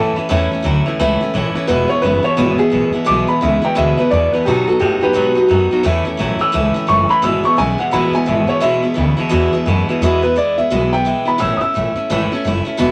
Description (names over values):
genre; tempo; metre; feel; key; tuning
rockabilly; 173 BPM; 4/4; swing 63% on 8ths; E major; A4 = 440 Hz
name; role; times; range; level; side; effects
clear upright piano; melody; 0.0-12.6 s; G4 to E6; -19 LUFS; equal; none
picked steel-string acoustic guitar; accompaniment; 0.0-12.9 s; E2 to F#4; -20 LUFS; equal; none
twangy electric guitar; riff; 0.0-10.0 s; E2 to G#3; -25 LUFS; equal; none
upright bass; bass; 0.0-12.9 s; E1 to B2; -22 LUFS; equal; none
room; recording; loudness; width
light reverb; vinyl crackle; -16 LUFS; mono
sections
0.0-10.0 A section; 10.0-12.9 B section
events
upright piano solo 10.0-12.9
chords
0.0 A; 1.7 E; 4.5 B; 5.8 A; 7.2 E; 11.4 A